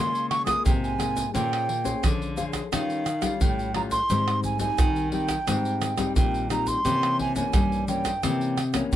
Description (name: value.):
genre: samba and choro.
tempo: 87 BPM.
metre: 4/4.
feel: straight.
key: unclear.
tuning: A4 = 439 Hz.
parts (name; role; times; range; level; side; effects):
reedy baroque flute; melody; 0.0-9.0 s; F5 to Eb6; -27 LUFS; right 2 dB; none.
nylon-string guitar; accompaniment; 0.0-9.0 s; G2 to C5; -30 LUFS; left 6 dB; none.
nylon-string guitar; bass; 0.0-9.0 s; Ab2 to G3; -29 LUFS; equal; none.
egg shaker, pandeiro, tamborim and surdo; percussion; 0.1-9.0 s; none; -27 LUFS; right 1 dB; none.
room: light reverb.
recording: close, detailed microphones.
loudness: -22 LUFS.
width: side -12 dB against mid.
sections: 0.0-9.0 A section.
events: none.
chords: 0.0 Db6; 1.3 Bbm9; 2.7 Eb9; 4.1 Abmaj7; 6.9 C7b9.